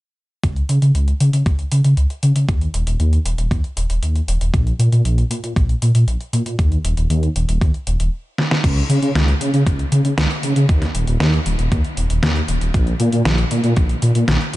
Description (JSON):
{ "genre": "synthwave", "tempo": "117 BPM", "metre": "4/4", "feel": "straight", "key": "unclear", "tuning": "A4 = 440 Hz", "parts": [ { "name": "dark detuned saw bass", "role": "bass", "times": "0.4-14.6 s", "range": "Eb1 to Db3", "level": "-16 LUFS", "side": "equal", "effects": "none" }, { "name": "detuned 8-bit digital drum machine", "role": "drums", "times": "0.4-14.6 s", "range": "crash cymbal, hi-hat, snare drum", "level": "-23 LUFS", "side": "equal", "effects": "overdrive" }, { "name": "electronic kick drum", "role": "drums", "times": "0.4-13.9 s", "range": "none", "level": "-18 LUFS", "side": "equal", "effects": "overdrive" } ], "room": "little or no reverb", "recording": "nothing above 11.0 kHz", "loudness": "-15 LUFS", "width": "side -17 dB against mid", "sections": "0.4-8.6 A section; 8.6-14.6 B section", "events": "drum fill 8.4", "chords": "none" }